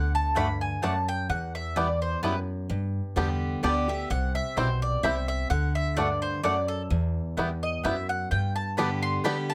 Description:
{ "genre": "bluegrass", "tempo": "128 BPM", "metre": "3/4", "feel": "swing 53% on 8ths", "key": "G major", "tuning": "A4 = 440 Hz", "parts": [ { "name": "mandolin", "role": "melody", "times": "0.0-9.5 s", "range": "A4 to C6", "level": "-32 LUFS", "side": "equal", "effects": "none" }, { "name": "picked steel-string acoustic guitar", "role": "accompaniment", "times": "0.0-9.5 s", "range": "E2 to G4", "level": "-33 LUFS", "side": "equal", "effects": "none" }, { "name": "upright bass", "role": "bass", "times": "0.0-9.2 s", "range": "B1 to G2", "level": "-32 LUFS", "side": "equal", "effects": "none" }, { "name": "bluegrass banjo", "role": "melody", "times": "0.4-9.4 s", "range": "G3 to E4", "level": "-32 LUFS", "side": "equal", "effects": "none" }, { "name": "mandolin", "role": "stabs", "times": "0.4-9.3 s", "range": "A3 to G5", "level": "-34 LUFS", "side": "equal", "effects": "none" } ], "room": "light reverb", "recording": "close, detailed microphones", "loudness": "-28 LUFS", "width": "mono", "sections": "0.0-9.5 A section", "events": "mandolin solo 0.0-9.5", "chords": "0.0 D; 1.3 Em; 2.7 G; 4.1 C; 5.5 D; 6.9 Em; 8.3 G", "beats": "0.36 0.83 | 1.30 1.76 2.23 | 2.70 3.17 3.64 | 4.10 4.57 5.04 | 5.51 5.97 6.44 | 6.91 7.38 7.85 | 8.31 8.78 9.25" }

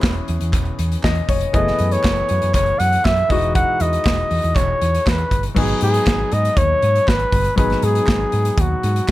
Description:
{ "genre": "disco", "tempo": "119 BPM", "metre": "4/4", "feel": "straight", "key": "unclear", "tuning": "A4 = 440 Hz", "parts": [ { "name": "clear concert grand piano", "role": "accompaniment", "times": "0.0-9.1 s", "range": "E3 to D#5", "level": "-25 LUFS", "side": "left 4 dB", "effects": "none" }, { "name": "picked electric bass", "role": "bass", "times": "0.0-9.1 s", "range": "E1 to G#2", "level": "-21 LUFS", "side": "equal", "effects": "none" }, { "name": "modern studio drum kit", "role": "drums", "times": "0.0-9.1 s", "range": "crash cymbal, hi-hat, kick drum, snare drum", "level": "-20 LUFS", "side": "equal", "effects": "none" }, { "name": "group handclap", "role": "percussion", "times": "0.0-9.1 s", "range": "none", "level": "-34 LUFS", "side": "right 5 dB", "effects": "none" }, { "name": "warm flugelhorn", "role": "melody", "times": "1.5-9.1 s", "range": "F#4 to F#5", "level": "-19 LUFS", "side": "equal", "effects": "none" } ], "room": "small room ambience", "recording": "none", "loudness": "-15 LUFS", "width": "side -16 dB against mid", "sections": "0.0-5.6 A section; 5.6-9.1 B section", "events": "grand piano fill 0.8-1.5", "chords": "0.0 E6; 1.5 F#m11; 3.3 Emaj9; 5.6 G#m7", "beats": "0.03 0.54 1.04 | 1.54 2.04 2.55 3.05 | 3.55 4.06 4.56 5.06 | 5.57 6.07 6.57 7.07 | 7.58 8.08 8.58 9.08" }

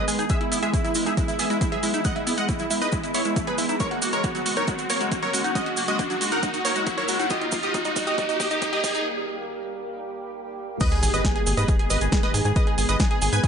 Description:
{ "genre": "uplifting trance", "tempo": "137 BPM", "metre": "4/4", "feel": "straight", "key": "G# minor", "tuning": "A4 = 440 Hz", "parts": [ { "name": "supersaw stab", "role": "melody", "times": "0.0-13.5 s", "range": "D#4 to G#5", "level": "-26 LUFS", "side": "right 1 dB", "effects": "sidechain pumping, ping-pong delay" }, { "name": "wide unison pluck", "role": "second line", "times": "0.0-13.5 s", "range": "D#5 to G#6", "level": "-32 LUFS", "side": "right 1 dB", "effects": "auto-pan, sidechain pumping, tape echo" }, { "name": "liquid acid bass", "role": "arpeggios", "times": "0.0-9.0 s", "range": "F#3 to G4", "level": "-32 LUFS", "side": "left 2 dB", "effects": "phaser, cassette tape, sidechain pumping, tape echo" }, { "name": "riser and sub drop", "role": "sound effects", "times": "0.1-12.6 s", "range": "none", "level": "-31 LUFS", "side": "equal", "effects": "none" }, { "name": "punchy analog drum machine", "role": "drums", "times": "0.1-13.5 s", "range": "crash cymbal, hi-hat, snare drum", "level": "-31 LUFS", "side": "equal", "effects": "overdrive, sidechain pumping on hats, sidechain pumping on cymbals" }, { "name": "cabasa", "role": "percussion", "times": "0.1-13.5 s", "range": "none", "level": "-32 LUFS", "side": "right 5 dB", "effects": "none" }, { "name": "electronic kick drum", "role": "drums", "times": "0.3-13.5 s", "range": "none", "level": "-25 LUFS", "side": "equal", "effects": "overdrive" }, { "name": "tight sequencer bass", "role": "bass", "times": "11.0-13.4 s", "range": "G#1 to G#2", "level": "-24 LUFS", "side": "equal", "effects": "sidechain pumping" } ], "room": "moderate digital room reverb, RT60 1.1 s, digital ambience", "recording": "high-pass filter, nothing above 10.5 kHz, faint mains hum", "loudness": "-21 LUFS", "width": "side -7 dB against mid", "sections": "0.0-10.8 A section; 10.8-13.5 B section", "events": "build-up 0.0-10.8; filter sweep on acid bass 0.0-10.8; riser 0.1-9.1; drum fill 3.8-9.1; break 9.1-10.8; drop 10.8-13.5; impact 10.8-12.6", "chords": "0.3 E; 3.8 F#; 7.3 D#; 10.8 G#m", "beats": "| 0.30 0.73 1.17 1.61 | 2.05 2.49 2.92 3.36 | 3.80 4.24 4.68 5.12 | 5.55 5.99 6.43 6.87 | 7.30 7.74 8.18 8.62 | 9.06 9.49 9.93 10.37 | 10.81 11.25 11.68 12.12 | 12.56 13.00 13.44" }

